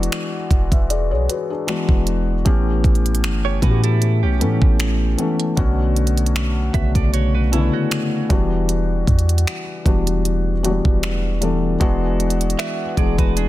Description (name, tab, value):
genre	contemporary R&B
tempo	77 BPM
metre	4/4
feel	swing 54% on 16ths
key	unclear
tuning	A4 = 444 Hz
part	felt-muted upright piano	accompaniment	0.0-13.5 s	C#3 to E5	-21 LUFS	left 3 dB	none
part	clean 808-style bass	bass	0.0-13.5 s	E1 to A2	-19 LUFS	equal	none
part	smooth R&B drum kit	drums	0.0-13.5 s	finger snaps, hi-hat, kick drum	-20 LUFS	equal	soft clipping on snare
part	direct-recorded clean electric guitar	arpeggios	3.4-13.5 s	C#4 to E5	-27 LUFS	right 12 dB	wide subtle chorus, ping-pong delay
room	digital ambience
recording	dense, heavily limited modern master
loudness	-16 LUFS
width	side -15 dB against mid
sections	0.0-13.5 A section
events	none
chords	0.0 E7; 2.5 A7; 5.6 Bm9; 8.3 Em7; 11.8 E7